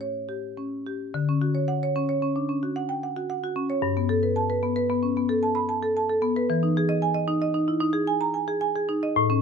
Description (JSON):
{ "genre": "classical, contemporary piece for solo marimba", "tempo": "112 BPM", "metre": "5/4", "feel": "rubato", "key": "D major", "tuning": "A4 = 436 Hz", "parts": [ { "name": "marimba with medium hard mallets", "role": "solo", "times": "0.0-9.4 s", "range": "G2 to B5", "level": "-23 LUFS", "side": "equal", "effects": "none" } ], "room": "light reverb", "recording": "close, detailed microphones", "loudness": "-23 LUFS", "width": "side -6 dB against mid", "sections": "0.0-1.1 A section; 1.1-9.4 B section", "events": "none", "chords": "0.0 A7; 1.1 Dmaj7; 3.8 Gadd9; 6.5 Emaj7", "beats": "0.00 0.57 | 1.14 1.69 2.23 2.76 3.30 | 3.83 4.37 4.90 5.44 5.97 | 6.50 7.04 7.57 8.10 8.64 | 9.17" }